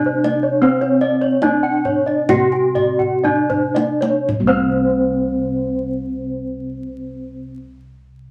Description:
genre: Balinese gamelan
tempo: 55-82 BPM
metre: 4/4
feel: straight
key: unclear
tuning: A4 = 436 Hz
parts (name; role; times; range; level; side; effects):
- gamelan-type bronze metallophone; melody; 0.0-7.6 s; C4 to G4-45c; -21 LUFS; equal; none
- gamelan-type bronze metallophone; arpeggios; 0.0-7.6 s; C5 to G5-45c; -26 LUFS; equal; none
- gamelan-type bossed gongs; bass; 0.0-7.5 s; C2 to Db4; -27 LUFS; equal; none
- gamelan-type bronze metallophone; arpeggios; 0.1-7.6 s; C5 to Ab5-40c; -26 LUFS; equal; none
- kendang; percussion; 0.2-4.8 s; none; -26 LUFS; equal; none
room: wet small room reverb, RT60 0.5 s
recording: vinyl crackle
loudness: -18 LUFS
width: mono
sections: 0.0-4.3 A section; 4.3-8.3 B section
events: slowing down 0.0-4.3; drum fill 3.0-4.3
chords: none

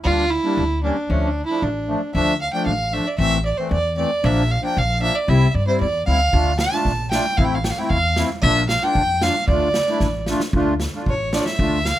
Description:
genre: klezmer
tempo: 114 BPM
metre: 2/4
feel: straight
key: D minor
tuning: A4 = 440 Hz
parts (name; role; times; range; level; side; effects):
- dark violin; melody; 0.0-12.0 s; C#4 to A5; -21 LUFS; right 1 dB; none
- upright bass; bass; 0.0-11.9 s; A1 to G2; -22 LUFS; equal; none
- accordion; accompaniment; 0.1-11.8 s; E3 to F4; -23 LUFS; left 1 dB; light tremolo tuning
- street-band drum kit; drums; 6.3-12.0 s; kick drum, snare drum; -24 LUFS; right 1 dB; none
room: light reverb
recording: close, detailed microphones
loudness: -17 LUFS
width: side -13 dB against mid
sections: 0.0-2.1 A section; 2.1-10.5 B section; 10.5-12.0 C section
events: drum fill 10.0-10.5; violin solo 10.5-12.0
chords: 0.0 Gm/D; 1.1 Dm; 3.2 Am; 4.2 Bb; 5.3 C; 6.3 Dm; 7.4 Am; 8.4 Bb; 9.5 Dm

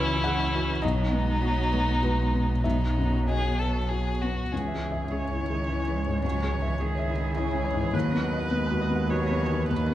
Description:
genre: neoclassical piano and strings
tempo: 94-108 BPM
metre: 3/4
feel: rubato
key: C# minor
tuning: A4 = 440 Hz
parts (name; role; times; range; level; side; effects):
- rich violin; melody; 0.0-4.5 s; D#4 to A4; -29 LUFS; left 2 dB; none
- warm cello; second line; 0.0-9.9 s; C#3 to A3; -34 LUFS; right 5 dB; none
- felt-muted upright piano; accompaniment; 0.0-9.9 s; B1 to G#5; -30 LUFS; left 2 dB; none
- rich viola; accompaniment; 0.0-9.9 s; B3 to C#5; -34 LUFS; right 2 dB; none
- rich double bass; bass; 0.0-9.9 s; B1 to D#2; -28 LUFS; equal; none
- concert harp; arpeggios; 4.5-9.9 s; C#4 to B5; -34 LUFS; left 2 dB; none
room: wet recital hall reverb, RT60 1.3 s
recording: recorded in a church or concert hall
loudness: -24 LUFS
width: side -13 dB against mid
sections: 0.0-4.5 A section; 4.5-9.9 B section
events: none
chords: 0.0 Eadd9/C#; 0.8 B; 4.5 C#m; 7.9 B/D#

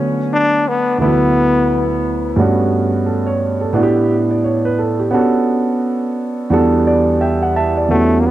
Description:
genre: hip hop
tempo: 87 BPM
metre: 4/4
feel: swing 61% on 16ths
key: E dorian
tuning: A4 = 440 Hz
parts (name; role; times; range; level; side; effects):
- brilliant trombone; melody; 0.0-2.0, 7.9-8.3 s; A3 to D4; -16 LUFS; left 3 dB; analog delay
- dark concert grand piano; accompaniment; 0.0-8.3 s; D2 to A5; -14 LUFS; right 2 dB; none
room: moderate plate reverb, RT60 2.8 s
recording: none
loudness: -13 LUFS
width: side -13 dB against mid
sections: 0.0-7.9 A section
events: grand piano fill 6.5-7.9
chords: 0.0 Bm9/D; 1.0 D69; 2.4 Gmaj9#11; 3.8 A7sus4; 5.1 Bm9; 6.5 Em11

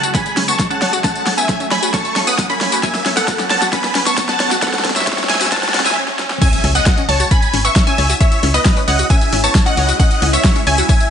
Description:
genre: uplifting trance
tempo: 134 BPM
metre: 4/4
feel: straight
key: C# minor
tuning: A4 = 440 Hz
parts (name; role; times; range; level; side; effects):
- big supersaw lead; melody; 0.0-11.1 s; A4 to D#6; -18 LUFS; equal; phaser, sidechain pumping, low-pass filter, dub echo
- wide unison pluck; second line; 0.0-11.1 s; D#5 to D#6; -23 LUFS; right 1 dB; sidechain pumping, dub echo
- shimmering ambient pad; sustained chords; 0.0-11.1 s; F#2 to G#4; -28 LUFS; equal; chorus, built-in reverb, phaser, sidechain pumping
- analog pluck; arpeggios; 0.0-10.9 s; B3 to C#5; -24 LUFS; left 4 dB; chorus, sidechain pumping, dub echo
- big-room dance drum kit; drums; 0.0-11.1 s; crash cymbal, hi-hat, snare drum, tambourine; -19 LUFS; left 1 dB; overdrive
- riser and impact; sound effects; 0.0-8.2 s; none; -26 LUFS; right 2 dB; none
- electronic kick drum; drums; 0.1-11.0 s; none; -15 LUFS; equal; none
- solid FM bass; bass; 6.6-10.8 s; G#1 to C#2; -17 LUFS; equal; sidechain pumping
room: light reverb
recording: high-pass filter, nothing above 10.3 kHz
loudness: -12 LUFS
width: side -8 dB against mid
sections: 0.0-6.4 A section; 6.4-11.1 B section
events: build-up 0.0-6.4; drum fill 0.0-6.0, 6.0-6.4; riser 0.0-6.4; stop 6.0-6.4; drop 6.4-11.1; impact 6.4-8.2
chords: 0.0 F#madd9; 6.4 C#m

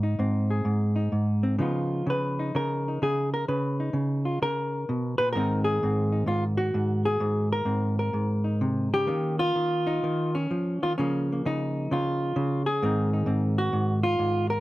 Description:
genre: solo jazz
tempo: 129 BPM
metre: 4/4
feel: swing 67% on 8ths, rubato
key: Ab mixolydian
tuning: A4 = 443 Hz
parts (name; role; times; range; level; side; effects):
- hollow-body jazz guitar; solo; 0.0-14.6 s; Ab2 to Cb5; -24 LUFS; equal; none
room: light reverb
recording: close, detailed microphones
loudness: -24 LUFS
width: side -17 dB against mid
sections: 0.0-14.6 A section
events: none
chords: 0.0 Ab; 1.6 Db13; 5.3 Ab9; 9.1 Ebsus2; 11.0 Db69; 12.8 Ab13

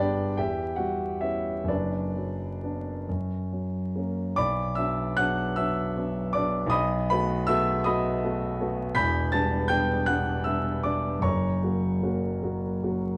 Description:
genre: classical, romantic nocturne for solo piano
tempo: 42-56 BPM (dotted quarters)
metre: 6/8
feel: rubato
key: B minor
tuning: A4 = 440 Hz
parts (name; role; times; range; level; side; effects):
- warm concert grand piano; solo; 0.0-13.2 s; E1 to B6; -27 LUFS; equal; none
room: moderate recital hall reverb, RT60 1.6 s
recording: close, detailed microphones, vinyl crackle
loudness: -27 LUFS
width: mono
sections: 0.0-4.4 A section; 4.4-13.2 B section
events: none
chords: 0.4 C#m7b5/E; 1.7 Bm/F#; 3.1 F#; 4.4 Bm; 6.7 B7; 9.0 Em7; 11.2 F#

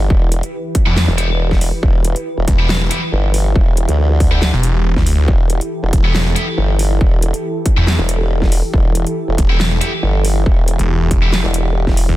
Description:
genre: heavy wobble dubstep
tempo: 139 BPM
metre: 4/4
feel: swing 53% on 16ths, half-time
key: E minor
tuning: A4 = 440 Hz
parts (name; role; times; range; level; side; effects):
- supersaw pad; sustained chords; 0.0-12.2 s; E3 to B4; -24 LUFS; right 1 dB; vintage 12-bit sampler grit, sidechain pumping, low-pass filter
- formant-sweep wobble bass; bass; 0.0-12.1 s; E1 to D2; -15 LUFS; equal; chorus, overdrive
- electronic kick drum; drums; 0.1-12.0 s; none; -14 LUFS; equal; distortion
- dubstep drum kit; drums; 0.3-12.1 s; handclaps, hi-hat, snare drum; -22 LUFS; equal; none
- tight distorted guitar; stabs; 0.9-11.3 s; B3 to G4; -24 LUFS; left 1 dB; distortion, dub echo
- snarling distorted saw bass; bass; 0.9-12.2 s; E1 to E2; -15 LUFS; equal; distortion, overdrive
room: little or no reverb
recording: dense, heavily limited modern master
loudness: -13 LUFS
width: side -15 dB against mid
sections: 0.0-12.2 A section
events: none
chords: 0.0 Em

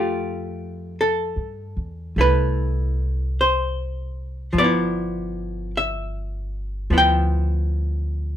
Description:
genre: jazz ballad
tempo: 51 BPM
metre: 4/4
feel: swing 68% on 8ths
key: unclear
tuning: A4 = 440 Hz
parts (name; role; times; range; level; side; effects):
- archtop guitar, miked and amplified; accompaniment; 0.0-8.4 s; F3 to G5; -21 LUFS; equal; none
- upright bass; bass; 0.0-8.4 s; G1 to G2; -24 LUFS; equal; none
room: light reverb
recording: band playing live in one room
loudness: -20 LUFS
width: side -10 dB against mid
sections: 0.0-8.4 A section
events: none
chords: 0.0 Fmaj9; 4.5 G6

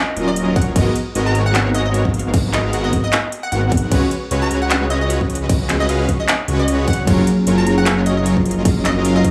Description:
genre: future bass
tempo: 152 BPM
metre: 4/4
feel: swing 56% on 16ths, half-time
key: unclear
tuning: A4 = 439 Hz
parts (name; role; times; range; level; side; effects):
- hollow square pluck; melody; 0.0-9.3 s; Eb5 to Bb5; -27 LUFS; equal; ensemble chorus, sidechain pumping, tape echo
- soft supersaw; riff; 0.2-9.3 s; Gb3 to Gb5; -23 LUFS; equal; sidechain pumping
- detuned saw bass; bass; 0.2-9.3 s; Eb1 to Db2; -23 LUFS; equal; chorus, sidechain pumping
- trap drum kit; drums; 0.2-9.3 s; crash cymbal, handclaps, hi-hat; -24 LUFS; equal; overdrive
- electronic kick drum; drums; 0.6-9.3 s; none; -21 LUFS; equal; overdrive
- glassy digital keys; accompaniment; 7.1-9.3 s; Gb3 to Ab4; -20 LUFS; equal; chorus, sidechain pumping
room: light reverb, digital ambience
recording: small room ambience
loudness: -17 LUFS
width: mono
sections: 0.0-9.3 A section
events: none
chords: 0.0 Ebm9; 0.8 Abm9; 3.9 Db7sus4; 7.1 Gbmaj7

